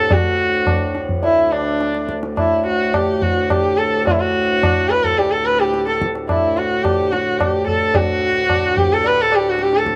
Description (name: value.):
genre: indian classical, Hindustani.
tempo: 108 BPM.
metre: 7/4.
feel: straight.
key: D raga khamaj.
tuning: A4 = 441 Hz.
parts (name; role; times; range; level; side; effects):
warm sarangi; melody; 0.0-9.9 s; D4 to B4; -19 LUFS; equal; none.
pedal harmonium; drone; 0.0-10.0 s; D2 to A2; -27 LUFS; equal; none.
tabla; percussion; 0.1-10.0 s; none; -23 LUFS; equal; none.
room: little or no reverb.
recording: close, detailed microphones.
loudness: -17 LUFS.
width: mono.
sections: 0.1-10.0 A section.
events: speeding up 0.0-10.0.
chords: none.